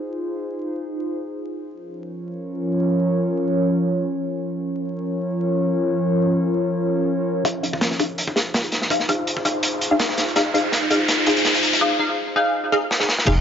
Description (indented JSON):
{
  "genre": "drum and bass, jungle",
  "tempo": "165 BPM",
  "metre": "4/4",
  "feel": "swing 54% on 16ths",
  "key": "F minor",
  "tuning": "A4 = 436 Hz",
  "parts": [
    { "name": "warbly tape-like pad", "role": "sustained chords", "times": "0.0-13.4 s", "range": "F3 to Db5", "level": "-22 LUFS", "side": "equal", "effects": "chorus, built-in reverb, vintage 12-bit sampler grit" },
    { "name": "filtered dub chord stab", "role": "stabs", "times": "7.4-13.3 s", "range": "Eb4 to F5", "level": "-22 LUFS", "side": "left 1 dB", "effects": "phaser, ensemble chorus, vintage 12-bit sampler grit, dub echo" },
    { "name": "riser", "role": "sound effects", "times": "9.2-11.8 s", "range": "none", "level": "-24 LUFS", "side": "left 1 dB", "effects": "none" },
    { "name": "crunchy breakbeat drum kit", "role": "drums", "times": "7.5-13.4 s", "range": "crash cymbal, hi-hat, kick drum, snare drum", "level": "-21 LUFS", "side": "equal", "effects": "high-pass filter on kick, high-pass filter on hats, high-pass filter on cymbals, high-pass filter on snare, high-pass filter on room" },
    { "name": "soft dub sub bass", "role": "bass", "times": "13.3-13.4 s", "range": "F1", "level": "-17 LUFS", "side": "equal", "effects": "tube saturation" }
  ],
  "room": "moderate digital room reverb, RT60 1.2 s, studio ambience",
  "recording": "vinyl crackle, nothing above 7.5 kHz",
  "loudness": "-19 LUFS",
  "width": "side -8 dB against mid",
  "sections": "0.0-7.4 A section; 7.4-13.3 B section",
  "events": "build-up 7.4-13.3; filter sweep on ambient pad 7.4-13.3; filter sweep on synth stab 7.4-13.3; riser 9.2-11.8; drum fill 10.4-11.8, 12.9-13.3",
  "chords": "0.0 Fm7; 1.6 Bbm/F; 7.4 Fm7"
}